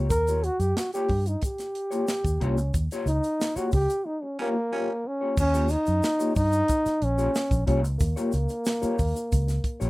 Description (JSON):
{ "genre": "funk", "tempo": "91 BPM", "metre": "4/4", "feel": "straight", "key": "Eb mixolydian", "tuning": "A4 = 440 Hz", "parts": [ { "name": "mellow electric guitar", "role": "accompaniment", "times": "0.0-9.9 s", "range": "Bb3 to Db5", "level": "-31 LUFS", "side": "left 3 dB", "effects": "harmonic tremolo" }, { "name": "vintage muted fingered electric bass", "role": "bass", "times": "0.0-9.9 s", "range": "Bb1 to G2", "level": "-25 LUFS", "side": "equal", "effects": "none" }, { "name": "breathy trombone", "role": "melody", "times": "0.1-9.9 s", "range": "Bb3 to Bb4", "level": "-26 LUFS", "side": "equal", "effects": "none" }, { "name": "tight funk drum kit", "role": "drums", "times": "0.1-9.9 s", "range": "crash cymbal, hi-hat, kick drum, snare drum", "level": "-29 LUFS", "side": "equal", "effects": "none" }, { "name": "egg shaker", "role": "percussion", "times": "0.1-9.9 s", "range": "none", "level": "-44 LUFS", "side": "left 3 dB", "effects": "none" }, { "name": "growling baritone saxophone", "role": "second line", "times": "4.4-4.9 s", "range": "Db4", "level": "-36 LUFS", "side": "right 3 dB", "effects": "none" } ], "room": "little or no reverb", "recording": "rough home demo mix", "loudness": "-23 LUFS", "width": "side -20 dB against mid", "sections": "0.0-5.4 A section; 5.4-9.9 B section", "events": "trombone solo 0.0-5.4; band accent 2.7-5.4; break 4.1-5.4", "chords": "0.0 Eb9 (rootless); 5.4 Eb9", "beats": "| 0.10 0.76 1.42 2.08 | 2.74 3.40 4.05 4.71 | 5.37 6.03 6.69 7.34 | 8.00 8.66 9.32" }